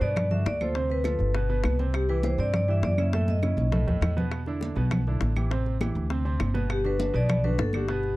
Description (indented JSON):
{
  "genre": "Afro-Cuban jazz",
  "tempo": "202 BPM",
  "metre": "4/4",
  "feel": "straight",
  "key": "G major",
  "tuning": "A4 = 440 Hz",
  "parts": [
    { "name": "vibraphone with medium hard mallets", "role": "melody", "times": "0.0-4.1, 6.7-8.2 s", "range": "G4 to E5", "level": "-29 LUFS", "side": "left 1 dB", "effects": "none" },
    { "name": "clear baby grand piano", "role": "accompaniment", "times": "0.0-8.1 s", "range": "A2 to C5", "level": "-32 LUFS", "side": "right 4 dB", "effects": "none" },
    { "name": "upright bass", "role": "bass", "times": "0.0-8.2 s", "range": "G1 to G2", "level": "-26 LUFS", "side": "equal", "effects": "none" },
    { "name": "bongos", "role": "percussion", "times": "0.0-8.2 s", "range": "none", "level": "-36 LUFS", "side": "left 6 dB", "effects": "none" },
    { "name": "claves", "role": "percussion", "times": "0.2-7.9 s", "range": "none", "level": "-41 LUFS", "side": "right 4 dB", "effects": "none" },
    { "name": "congas", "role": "percussion", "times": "0.2-8.2 s", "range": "none", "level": "-32 LUFS", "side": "equal", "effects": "none" }
  ],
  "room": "light reverb",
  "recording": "dark, warm production",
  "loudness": "-23 LUFS",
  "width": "side -18 dB against mid",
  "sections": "0.0-8.2 A section",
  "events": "drum fill 3.1-4.3",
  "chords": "0.0 Gmaj7; 0.8 Dm7; 1.4 G; 1.9 C; 3.1 F#m7; 3.7 B7; 4.3 E7(no3); 5.5 Am7; 6.1 Gadd11; 6.7 Gmaj7",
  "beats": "0.16 0.46 | 0.76 1.05 1.35 1.65 | 1.95 2.24 2.54 2.83 | 3.13 3.43 3.73 4.02 | 4.32 4.62 4.91 5.21 | 5.51 5.80 6.10 6.40 | 6.70 6.99 7.29 7.59 | 7.88"
}